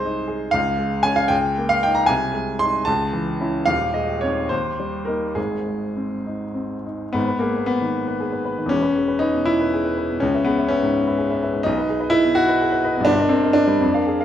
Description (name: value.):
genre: classical, romantic character piece for solo piano.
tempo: 64-85 BPM (dotted quarters).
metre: 6/8.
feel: rubato.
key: Ab major, G# minor from 7.2 s.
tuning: A4 = 442 Hz.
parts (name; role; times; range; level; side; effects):
warm baby grand piano; solo; 0.0-14.2 s; Eb1 to C6; -18 LUFS; equal; none.
room: wet recital hall reverb, RT60 1.3 s.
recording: none.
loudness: -18 LUFS.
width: side -10 dB against mid.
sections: 0.0-7.2 A section; 7.2-14.2 B section.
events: none.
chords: 0.0 Ab/C; 0.6 Db; 1.3 Eb7/Db; 2.1 Ab/C; 2.9 A/C#; 3.7 Ab/Eb; 4.5 Eb; 5.4 Ab; 7.2 G#m; 8.7 E; 10.2 C#m7; 11.7 G#m/B; 13.1 Eb/G.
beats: | 0.56 1.32 | 2.10 2.88 | 3.68 4.51 | 5.37 6.25 | 7.15 7.94 | 8.71 9.47 | 10.22 10.96 | 11.66 12.38 | 13.10 13.83.